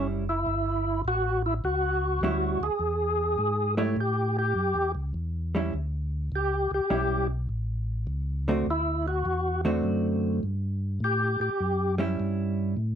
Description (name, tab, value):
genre	jazz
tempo	102 BPM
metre	4/4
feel	swing 67% on 8ths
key	A mixolydian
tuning	A4 = 441 Hz
part	percussive tonewheel organ	melody	0.0-12.0 s	E4 to G#4	-26 LUFS	equal	slow rotary speaker, overdrive, chorus vibrato
part	vintage hollow-body jazz guitar	accompaniment	0.0-12.7 s	D3 to C#5	-28 LUFS	right 2 dB	none
part	mellow tonewheel organ	bass	0.0-13.0 s	F#1 to A2	-29 LUFS	equal	chorus vibrato, slow rotary speaker
room	light reverb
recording	none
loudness	-25 LUFS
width	side -8 dB against mid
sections	0.0-4.0 A section; 4.0-13.0 B section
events	tonewheel organ solo 4.0-13.0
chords	0.0 A7; 2.8 E; 4.0 A7; 8.7 D7; 11.0 A7